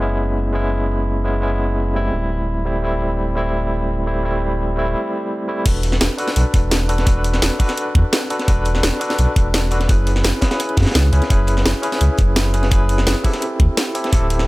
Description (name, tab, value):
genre	liquid drum and bass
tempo	170 BPM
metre	4/4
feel	straight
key	E mixolydian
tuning	A4 = 441 Hz
part	barky tine electric piano	accompaniment	0.0-14.5 s	G3 to B4	-21 LUFS	equal	overdrive, fast tremolo, digital delay
part	sub bass with octave	bass	0.0-14.5 s	D1 to F#2	-19 LUFS	equal	tube saturation
part	crunchy breakbeat drum kit	drums	5.7-14.5 s	hi-hat, snare drum	-25 LUFS	equal	high-pass filter on hats, high-pass filter on snare, high-pass filter on room
part	drum and bass drum kit	drums	5.7-14.5 s	crash cymbal, hi-hat, snare drum	-22 LUFS	equal	none
part	electronic kick drum	drums	5.7-14.2 s	none	-15 LUFS	equal	none
room	studio reverb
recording	none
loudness	-16 LUFS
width	side -20 dB against mid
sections	0.0-5.7 A section; 5.7-14.5 B section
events	drop 5.7-14.5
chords	0.0 F#9sus4; 2.1 D9sus4; 5.7 E9sus4; 9.9 F#9sus4; 13.4 D9sus4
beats	| 0.01 0.36 0.71 1.07 | 1.42 1.77 2.13 2.48 | 2.83 3.19 3.54 3.89 | 4.24 4.60 4.95 5.30 | 5.66 6.01 6.36 6.71 | 7.07 7.42 7.77 8.13 | 8.48 8.83 9.19 9.54 | 9.89 10.24 10.60 10.95 | 11.30 11.66 12.01 12.36 | 12.71 13.07 13.42 13.77 | 14.13